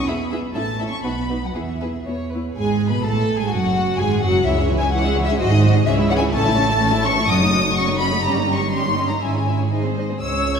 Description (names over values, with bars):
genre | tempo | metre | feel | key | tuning
quick classical-period movement for string orchestra | 116-130 BPM | 2/4 | rubato | unclear | A4 = 440 Hz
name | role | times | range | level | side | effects
dark studio violin section | melody | 0.0-10.6 s | D#5 to G#6 | -23 LUFS | left 3 dB | none
dark studio cello section | bass | 0.0-10.6 s | C#2 to C#4 | -25 LUFS | right 1 dB | none
rich studio violin section | second line | 0.1-10.6 s | C#4 to E5 | -27 LUFS | left 1 dB | none
dark studio viola section | accompaniment | 0.1-10.6 s | E3 to C#5 | -23 LUFS | right 2 dB | none
dark studio double bass section | bass | 0.1-10.6 s | F#1 to E2 | -23 LUFS | right 2 dB | none
room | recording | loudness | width
wet scoring stage reverb, RT60 1.8 s | heard from further back in the room | -17 LUFS | side -6 dB against mid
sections
0.0-2.6 A section; 2.6-10.2 A section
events
none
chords
0.1 E5; 0.6 A; 1.0 B; 1.6 E5; 2.6 G#m; 3.5 N.C.; 4.0 F#sus2; 4.5 C#m; 5.4 G#7; 5.9 C#m; 6.3 A; 7.3 D#m7b5/F#; 8.2 D#7/G; 9.2 C#m/G#; 9.7 G#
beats
0.08 | 0.56 1.05 | 1.55 2.07 | 2.57 3.05 | 3.52 3.99 | 4.46 4.93 | 5.40 5.87 | 6.34 6.81 | 7.29 7.76 | 8.24 8.72 | 9.22 9.72 | 10.23